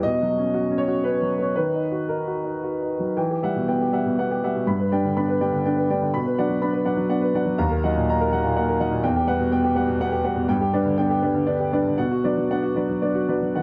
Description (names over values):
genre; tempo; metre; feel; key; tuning
neoclassical minimalist piano; 109-126 BPM; 3/4; rubato; unclear; A4 = 440 Hz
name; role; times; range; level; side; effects
warm concert grand piano; solo; 0.0-13.6 s; D#2 to B5; -23 LUFS; equal; none
room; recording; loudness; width
moderate spring reverb, RT60 1.6 s, small room ambience; dark, warm production; -23 LUFS; mono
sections
0.0-3.2 A section; 3.2-13.6 B section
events
none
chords
0.1 Badd9; 1.6 D#m; 3.2 Emadd9; 4.7 G; 6.1 Bm; 7.6 D#m; 9.0 Emadd9; 10.5 G; 12.0 Bm